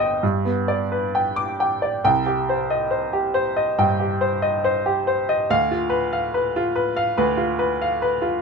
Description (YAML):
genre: classical, romantic character piece for solo piano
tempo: 66-72 BPM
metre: 4/4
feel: rubato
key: C minor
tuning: A4 = 439 Hz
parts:
  - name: clear baby grand piano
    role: solo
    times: 0.0-8.4 s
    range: G1 to Eb6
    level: -19 LUFS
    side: equal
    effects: none
room: light reverb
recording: faint mains hum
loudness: -19 LUFS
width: side -5 dB against mid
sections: 0.0-2.0 A section; 2.0-8.4 B section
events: none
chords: 0.2 G; 2.0 Cm; 5.5 Bdim/D